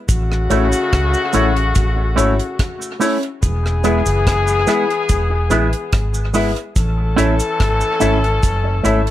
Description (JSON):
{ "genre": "roots reggae", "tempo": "72 BPM", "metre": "4/4", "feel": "straight", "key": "unclear", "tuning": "A4 = 439 Hz", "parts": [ { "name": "warm horn section", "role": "second line", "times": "0.1-9.1 s", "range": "C#3 to A4", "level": "-20 LUFS", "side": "left 4 dB", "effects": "tape echo" }, { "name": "vintage muted fingered electric bass", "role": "bass", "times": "0.1-9.1 s", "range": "E1 to C#2", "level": "-18 LUFS", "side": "equal", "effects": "none" }, { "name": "deep reggae drum kit", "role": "drums", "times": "0.1-9.1 s", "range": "hi-hat, kick drum, rim click", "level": "-20 LUFS", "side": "equal", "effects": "dub echo" }, { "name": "cabasa", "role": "percussion", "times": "0.1-9.1 s", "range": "none", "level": "-29 LUFS", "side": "right 3 dB", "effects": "none" }, { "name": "electric guitar with an envelope filter", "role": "accompaniment", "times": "0.5-9.0 s", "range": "G#3 to E4", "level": "-21 LUFS", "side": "right 6 dB", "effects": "phaser, tape echo" }, { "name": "warm grand piano", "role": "stabs", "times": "0.5-9.0 s", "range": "C#4 to E5", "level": "-20 LUFS", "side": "left 5 dB", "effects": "none" } ], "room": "light reverb", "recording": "none", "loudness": "-14 LUFS", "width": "side -13 dB against mid", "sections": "0.0-9.1 A section", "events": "none", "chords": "0.1 A; 3.4 E; 6.8 A" }